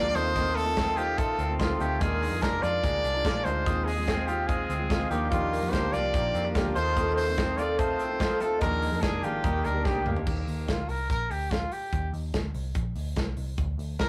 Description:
jangly indie pop; 145 BPM; 4/4; straight; Eb major; A4 = 440 Hz
clear trumpet; melody; 0.0-14.1 s; F4 to D5; -32 LUFS; equal
glockenspiel with soft plastic mallets; second line; 0.0-10.0 s; A5 to F6; -43 LUFS; equal
combo organ; accompaniment; 0.0-10.1 s; Bb3 to A4; -40 LUFS; equal
fingerpicked steel-string acoustic guitar; accompaniment; 0.0-10.3 s; Eb3 to Bb4; -36 LUFS; equal
direct-recorded clean electric guitar; arpeggios; 0.0-10.8 s; Eb3 to G4; -37 LUFS; equal; spring reverb
vintage muted picked electric bass; bass; 0.0-14.1 s; F1 to F2; -35 LUFS; equal
modern studio drum kit; drums; 0.1-14.1 s; crash cymbal, hi-hat, kick drum, snare drum, toms; -33 LUFS; equal
moderate small room reverb, RT60 0.5 s; rough rehearsal-room recording, warm saturation; -28 LUFS; mono
0.0-10.3 A section; 10.3-14.1 B section
drum fill 9.9-10.3
0.2 F7/Eb; 2.0 Bb7; 3.7 Fm7/Eb; 5.1 Gm7; 6.8 F7/Eb; 8.6 Bb7/Eb; 9.4 Ebmaj7; 10.3 Eb; 13.6 Ab(#11) (rootless)
| 0.36 0.77 1.18 1.60 | 2.01 2.42 2.83 3.25 | 3.66 4.07 4.49 4.90 | 5.31 5.73 6.14 6.55 | 6.96 7.38 7.79 8.20 | 8.62 9.03 9.44 9.86 | 10.27 10.68 11.10 11.51 | 11.93 12.34 12.75 13.17 | 13.58 14.00

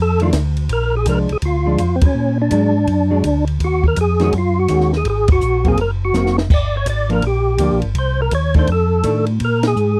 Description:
soul jazz organ trio; 166 BPM; 4/4; swing 65% on 8ths; Bb mixolydian; A4 = 440 Hz
percussive tonewheel organ; melody; 0.0-10.0 s; C4 to D5; -21 LUFS; equal; slow rotary speaker, overdrive, chorus vibrato
mellow tonewheel organ; bass; 0.0-10.0 s; F1 to Bb2; -20 LUFS; equal; chorus vibrato, slow rotary speaker
hollow-body jazz guitar; accompaniment; 0.2-9.3 s; Eb3 to Gb4; -22 LUFS; equal
compact cocktail drum kit; drums; 0.2-9.9 s; crash cymbal, hi-hat, kick drum, ride cymbal, snare drum; -21 LUFS; equal
little or no reverb; dry, close 1970s-style studio recording; -17 LUFS; mono
0.7-10.0 A section
band accent 2.0, 5.2, 9.6; drum fill 6.1-6.5
0.0 F6; 0.7 Bb7; 2.1 Bbaug7; 3.6 Ebm11; 5.1 Ab9; 6.5 Gm7; 8.0 Cm; 8.7 F6; 9.4 Bb7(no3)
0.34 | 0.70 1.06 1.42 1.79 | 2.15 2.51 2.88 3.24 | 3.60 3.96 4.33 4.69 | 5.05 5.41 5.78 6.14 | 6.50 6.86 7.23 7.59 | 7.95 8.31 8.68 9.04 | 9.40 9.76

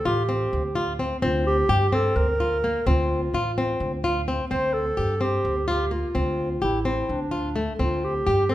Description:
contemporary instrumental, chamber music in an uneven meter; 256 BPM (eighths); 7/8; straight; A4 = 440 Hz
mellow clarinet; melody; 0.0-8.5 s; D4 to C5; -26 LUFS; right 1 dB
flamenco guitar; arpeggios; 0.1-8.5 s; A3 to G4; -25 LUFS; left 2 dB
upright bass; bass; 0.1-8.5 s; A1 to G2; -27 LUFS; right 1 dB
moderate recital hall reverb, RT60 1.8 s; minimal, uncompressed stereo recording; -22 LUFS; side -14 dB against mid
0.0-4.5 A section; 4.5-8.5 A section
0.0 Dm7; 1.2 C7(no3)/D; 2.9 Dm7; 4.5 C5/D; 6.1 Dm7; 7.8 Csus4/D
0.06 0.29 0.52 0.76 0.99 | 1.23 1.46 1.69 1.93 2.16 2.40 2.63 | 2.87 3.10 3.33 3.57 3.80 4.04 4.27 | 4.51 4.74 4.97 5.21 5.45 5.68 5.91 | 6.15 6.38 6.62 6.85 7.09 7.32 7.56 | 7.79 8.03 8.26 8.50

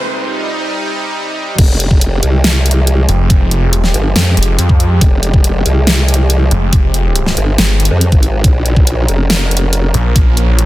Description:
heavy wobble dubstep; 140 BPM; 4/4; half-time; F minor; A4 = 445 Hz
supersaw pad; sustained chords; 0.0-10.7 s; C3 to Bb4; -20 LUFS; right 1 dB; sidechain pumping, low-pass filter
formant-sweep wobble bass; bass; 1.6-9.9 s; F1 to F2; -12 LUFS; equal; chorus, overdrive
big-room dance drum kit; drums; 1.6-10.7 s; crash cymbal, hi-hat, snare drum; -16 LUFS; equal
electronic kick drum; drums; 1.6-10.2 s; -9 LUFS; equal
snarling distorted saw bass; bass; 3.1-10.7 s; F1 to F2; -12 LUFS; equal; distortion, overdrive
little or no reverb; dense, heavily limited modern master, high-pass filter; -10 LUFS; side -16 dB against mid
0.0-1.6 A section; 1.6-10.7 B section
break 0.0-1.6; build-up 0.0-1.6; drop 1.6-10.7
0.0 Cm; 1.6 Fmadd9; 8.4 Bbm
0.30 0.73 1.16 | 1.58 2.01 2.44 2.87 | 3.30 3.73 4.16 4.58 | 5.01 5.44 5.87 6.30 | 6.73 7.16 7.58 8.01 | 8.44 8.87 9.30 9.73 | 10.16 10.59

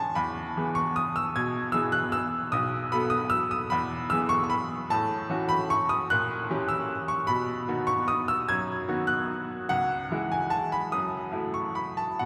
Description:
classical, piano waltz; 133-160 BPM; 3/4; rubato; A4 = 438 Hz
bright upright piano; solo; 0.0-12.3 s; B1 to G#6; -28 LUFS; equal
wet cathedral reverb, RT60 6.6 s; -28 LUFS; mono
0.0-12.3 A section
0.2 E; 2.5 B7; 3.7 E; 4.9 F#m7/A; 6.1 A#dim7; 7.3 B; 9.7 C#m; 10.9 F#m7
| 0.17 0.56 0.97 | 1.36 1.74 2.15 | 2.55 2.93 3.33 | 3.72 4.11 4.51 | 4.91 5.30 5.70 | 6.10 6.50 6.90 | 7.29 7.68 8.09 | 8.49 8.88 9.29 | 9.70 10.10 10.51 | 10.92 11.33 11.76 | 12.21

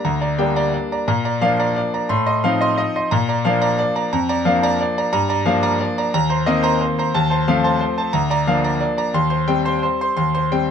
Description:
classical, piano waltz; 177 BPM; 3/4; uneven beats, rubato; A4 = 442 Hz
bright grand piano; solo; 0.0-10.7 s; D2 to C6; -16 LUFS; equal
little or no reverb; close, detailed microphones; -16 LUFS; side -7 dB against mid
0.0-10.7 A section
0.0 Gm; 1.1 Bb; 2.1 F7/A; 3.1 Bb; 5.1 Gm7; 6.1 Cm7/Eb; 7.1 F7/Eb; 8.1 Bb/D; 9.2 Cm/Eb
| 0.04 0.38 0.73 | 1.08 1.42 1.77 | 2.11 2.45 2.79 | 3.13 3.45 3.79 | 4.12 4.45 4.80 | 5.13 5.46 5.81 | 6.14 6.46 6.80 | 7.14 7.47 7.80 | 8.13 8.47 8.82 | 9.15 9.48 9.84 | 10.19 10.53

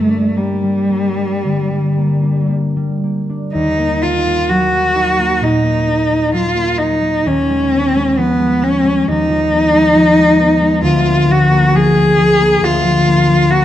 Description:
classical, romantic duo for cello and harp; 55-69 BPM; 4/4; rubato; G minor, Eb minor from 3.5 s; A4 = 439 Hz
rich cello; melody; 0.0-13.6 s; G3 to Ab4; -13 LUFS; left 1 dB
concert harp; accompaniment; 0.0-13.6 s; D2 to Eb4; -15 LUFS; equal
wet scoring stage reverb, RT60 1.7 s; close, detailed microphones; -11 LUFS; side -12 dB against mid
0.0-3.5 A section; 3.5-13.6 B section
0.0 Gm; 3.5 Ebm; 7.3 Fm7b5/Eb; 10.8 Bb7/D
0.36 1.44 2.50 | 3.54 4.50 5.42 6.34 | 7.26 8.18 9.07 9.96 | 10.84 11.73 12.63 13.51

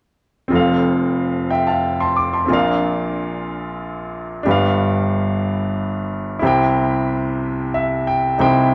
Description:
gospel; 61 BPM (dotted quarters); 6/8; straight; F major; A4 = 441 Hz
clear baby grand piano; solo; 0.5-8.7 s; F1 to D6; -19 LUFS; equal
wet large studio reverb, RT60 0.8 s; band playing live in one room; -19 LUFS; mono
0.5-8.7 A section
grand piano fill 7.4-8.4
0.5 F; 2.5 Bb; 4.5 G7; 6.4 C
| 0.51 1.50 | 2.49 3.47 | 4.46 5.44 | 6.43 7.41 | 8.39

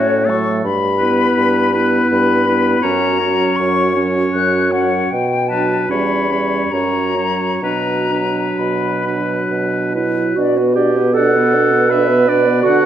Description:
classical, slow romantic movement for wind quintet; 62-84 BPM; 3/4; rubato; B minor; A4 = 440 Hz
bright concert flute; melody; 0.0-12.9 s; B4 to F#6; -20 LUFS; left 7 dB
bright oboe; second line; 0.0-12.9 s; F#4 to F#5; -21 LUFS; left 2 dB
clear clarinet; accompaniment; 0.0-12.9 s; A3 to B4; -19 LUFS; right 6 dB
mellow French horn; accompaniment; 0.0-12.9 s; F#3 to D4; -21 LUFS; equal
mellow bassoon; bass; 0.0-12.9 s; E2 to D3; -19 LUFS; right 2 dB
wet recital hall reverb, RT60 1.6 s; dark, warm production; -13 LUFS; side -10 dB against mid
0.0-10.4 A section; 10.4-12.9 A section
0.0 F#m/A; 0.6 Em/G; 2.8 F#; 5.1 Bm; 5.9 C#dim/E; 6.7 F#; 7.6 Bm
| 0.64 1.37 2.11 | 2.84 3.58 4.34 | 5.11 5.90 6.73 | 7.63 8.59 9.51 | 10.37 11.15 11.90 | 12.64

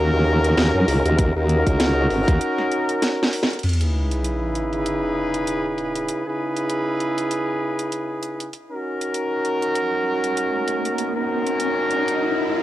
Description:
glitch hop; 98 BPM; 4/4; swing 57% on 16ths; C# dorian; A4 = 439 Hz
warm horn section; stabs; 0.0-12.6 s; C#3 to B4; -22 LUFS; equal; sidechain pumping, cassette tape, tape echo
formant-sweep wobble bass; bass; 0.0-2.4 s; G#1 to F#2; -19 LUFS; equal; chorus
drum and bass drum kit; drums; 0.4-12.2 s; crash cymbal, hi-hat, snare drum; -26 LUFS; equal; overdrive, cassette tape
electronic kick drum; drums; 1.2-2.4 s; -19 LUFS; equal; overdrive, cassette tape
sub drop and riser; sound effects; 3.6-12.6 s; -26 LUFS; equal
light reverb; home recording on cassette; -19 LUFS; side -14 dB against mid
0.0-3.6 A section; 3.6-12.6 B section
filter sweep on horn section 0.0-3.6; break 2.4-3.6; drum fill 3.0-3.6; band accent 3.4-3.7; impact 3.6-6.1; riser 9.9-12.6
0.0 D#m7; 3.6 C#m7; 8.5 D#m7
0.57 | 1.19 1.80 2.41 3.02 | 3.64 4.25 4.86 5.47 | 6.08 6.70 7.31 7.92 | 8.53 9.15 9.76 10.37 | 10.98 11.60 12.21

